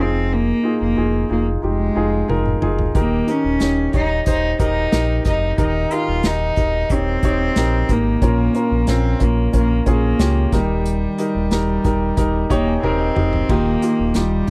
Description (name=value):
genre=piano-driven pop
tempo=91 BPM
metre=4/4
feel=straight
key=unclear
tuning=A4 = 441 Hz
part: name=rich cello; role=melody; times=0.0-14.5 s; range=G3 to F4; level=-23 LUFS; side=equal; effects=none
part: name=warm baby grand piano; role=accompaniment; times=0.0-14.5 s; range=Bb2 to Bb5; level=-24 LUFS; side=equal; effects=none
part: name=sub bass with octave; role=bass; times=0.0-14.4 s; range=Eb1 to Db2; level=-23 LUFS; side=equal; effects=none
part: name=unplugged drum kit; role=drums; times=2.3-14.5 s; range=crash cymbal, hi-hat, kick drum, snare drum, toms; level=-23 LUFS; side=equal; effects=none
room=little or no reverb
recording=dry, close 1970s-style studio recording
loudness=-18 LUFS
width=mono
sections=0.0-13.5 A section; 13.5-14.5 B section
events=drum fill 2.3-2.9, 12.8-13.5; grand piano fill 12.2-13.5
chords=0.0 Fm7; 2.9 Eb; 8.2 Bbm; 10.5 Eb; 13.5 Ebadd9